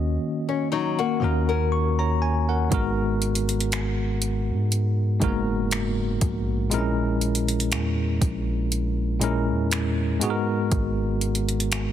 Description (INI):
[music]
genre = contemporary R&B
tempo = 60 BPM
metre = 4/4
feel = swing 54% on 16ths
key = G# minor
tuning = A4 = 439 Hz
[part]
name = bell-like tine electric piano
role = accompaniment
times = 0.0-11.9 s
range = G#2 to C#6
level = -24 LUFS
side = equal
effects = medium stereo tremolo
[part]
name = long sustained 808-style bass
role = bass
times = 0.0-11.9 s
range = F#1 to G#2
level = -26 LUFS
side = equal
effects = none
[part]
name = nylon-string guitar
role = arpeggios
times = 0.5-2.7 s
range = F#3 to A#4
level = -26 LUFS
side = left 9 dB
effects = digital delay
[part]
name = smooth R&B drum kit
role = drums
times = 2.7-11.9 s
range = finger snaps, hi-hat, kick drum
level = -27 LUFS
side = equal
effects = overdrive
[sound]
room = little or no reverb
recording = heavily compressed radio sound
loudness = -22 LUFS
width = side -10 dB against mid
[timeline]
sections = 0.0-11.9 A section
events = none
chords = 0.0 D#m7; 2.7 G#m7; 6.7 A#m7b5; 10.2 G#m7